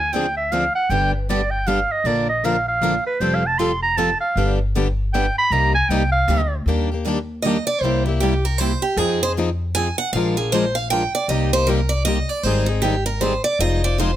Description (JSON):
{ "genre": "acoustic string swing (jazz manouche)", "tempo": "156 BPM", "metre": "3/4", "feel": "swing 62% on 8ths", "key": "C minor, Eb major from 6.7 s", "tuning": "A4 = 439 Hz", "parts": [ { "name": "breathy clarinet", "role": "melody", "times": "0.0-6.6 s", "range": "B4 to C6", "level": "-20 LUFS", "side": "right 2 dB", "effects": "slapback echo" }, { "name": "upright bass", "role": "bass", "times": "0.0-14.2 s", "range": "F1 to F2", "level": "-23 LUFS", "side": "equal", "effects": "none" }, { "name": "picked plugged-in swing-style acoustic guitar", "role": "accompaniment", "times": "0.1-14.1 s", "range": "C3 to C5", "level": "-24 LUFS", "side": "left 5 dB", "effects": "none" }, { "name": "picked steel-string acoustic guitar", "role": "accompaniment", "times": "0.1-14.1 s", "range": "C3 to Bb4", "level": "-27 LUFS", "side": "right 6 dB", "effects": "none" }, { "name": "picked steel-string acoustic guitar", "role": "second line", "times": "7.4-14.2 s", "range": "Eb4 to Ab5", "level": "-21 LUFS", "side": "right 2 dB", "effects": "none" } ], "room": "little or no reverb", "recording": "close, detailed microphones", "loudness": "-17 LUFS", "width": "side -12 dB against mid", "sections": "0.0-6.7 A section; 6.7-14.2 A section", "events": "clarinet solo 0.0-6.7; steel-string acoustic guitar solo 6.7-14.2", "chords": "0.0 Dm7b5; 0.9 G; 2.1 Bb; 3.2 Fadd9; 4.4 G; 5.5 Cm7; 6.7 Ebmaj7; 7.8 C7; 9.0 Fm7; 10.1 Bb7; 11.3 Cm7; 12.4 Abmaj7; 13.6 Fm7" }